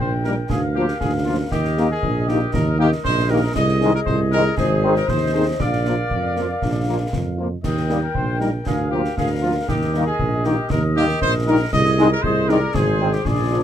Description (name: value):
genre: military-style march for wind band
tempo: 118 BPM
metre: 2/4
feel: straight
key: Eb major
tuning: A4 = 443 Hz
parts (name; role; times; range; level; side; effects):
- mellow trumpet section; melody; 0.0-13.6 s; F4 to Eb5; -25 LUFS; equal; none
- warm woodwind section; second line; 0.0-13.6 s; F4 to G5; -25 LUFS; left 3 dB; none
- mellow tuba; bass; 0.0-13.6 s; Ab1 to F2; -21 LUFS; right 2 dB; none
- mellow French horn section; accompaniment; 0.2-13.6 s; F3 to Ab4; -24 LUFS; left 2 dB; none
- warm trombone section; sustained chords; 0.2-13.6 s; Eb3 to D4; -22 LUFS; left 1 dB; none
- concert snare drum, concert bass drum and clash cymbals; drums; 0.2-13.6 s; none; -27 LUFS; equal; none
room: light reverb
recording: close, detailed microphones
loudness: -17 LUFS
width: side -10 dB against mid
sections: 0.0-13.6 A section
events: none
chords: 0.0 Eb; 0.5 Bb/D; 1.5 Eb; 3.6 Ab/C; 4.6 Ab; 5.6 Bb; 7.6 Eb; 8.7 Bb/D; 9.7 Eb; 11.7 Ab/C; 12.8 Ab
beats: | 0.50 1.01 | 1.52 2.03 | 2.54 3.05 | 3.56 4.07 | 4.58 5.09 | 5.61 6.12 | 6.62 7.14 | 7.65 8.16 | 8.67 9.18 | 9.69 10.20 | 10.71 11.22 | 11.73 12.24 | 12.75 13.26